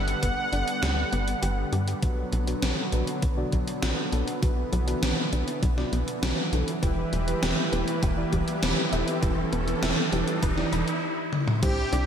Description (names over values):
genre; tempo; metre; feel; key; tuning
synthwave; 100 BPM; 4/4; straight; unclear; A4 = 440 Hz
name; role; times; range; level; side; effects
soft supersaw; melody; 0.0-1.9, 11.6-12.1 s; G4 to F#5; -30 LUFS; right 1 dB; ping-pong delay, slapback echo
soft supersaw; sustained chords; 0.0-12.1 s; C3 to B4; -32 LUFS; equal; sidechain pumping
analog pluck; arpeggios; 0.0-12.1 s; F#3 to B4; -36 LUFS; left 2 dB; chorus, cassette tape, ping-pong delay, slapback echo
tight sequencer bass; bass; 0.0-12.1 s; E1 to G2; -28 LUFS; equal; none
gated 80s digital drum machine; drums; 0.1-12.0 s; crash cymbal, hi-hat, snare drum, toms; -30 LUFS; equal; gated reverb, gated reverb snare, overdrive
electronic kick drum; drums; 0.2-11.7 s; none; -28 LUFS; equal; overdrive
mellow FM electric piano; stabs; 2.0-12.0 s; B2 to D5; -32 LUFS; right 1 dB; chorus, low-pass filter, ping-pong delay, slapback echo
riser; sound effects; 5.5-11.0 s; none; -36 LUFS; left 1 dB; slapback echo
room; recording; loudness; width
wet concert hall reverb, RT60 1.8 s; big arena sound; -24 LUFS; side -8 dB against mid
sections
0.0-2.0 A section; 2.0-11.6 B section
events
kick drops out 1.4-2.0; riser 5.5-11.0; drum fill 11.3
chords
0.0 G; 2.0 Bm; 6.8 Em